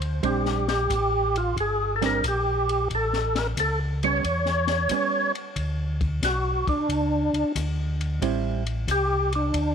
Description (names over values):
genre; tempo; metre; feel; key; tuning
soul jazz organ trio; 90 BPM; 4/4; swing 67% on 8ths; unclear; A4 = 445 Hz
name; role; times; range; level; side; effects
mellow tonewheel organ; bass; 0.0-9.7 s; G1 to E2; -27 LUFS; equal; chorus vibrato, slow rotary speaker
compact cocktail drum kit; drums; 0.0-9.7 s; hi-hat, kick drum, ride cymbal, snare drum; -33 LUFS; left 4 dB; none
percussive tonewheel organ; melody; 0.2-9.7 s; D4 to C#5; -24 LUFS; equal; overdrive, chorus vibrato, slow rotary speaker
hollow-body jazz guitar; accompaniment; 0.2-8.6 s; G3 to E4; -29 LUFS; right 12 dB; none
room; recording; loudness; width
light reverb, small room ambience; 1960s-style stereo; -22 LUFS; side -7 dB against mid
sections
0.0-5.6 A section; 5.6-9.7 B section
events
tonewheel organ solo 5.6-9.7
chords
0.2 Bb69; 2.9 A9; 5.6 Bmadd9; 8.2 Am7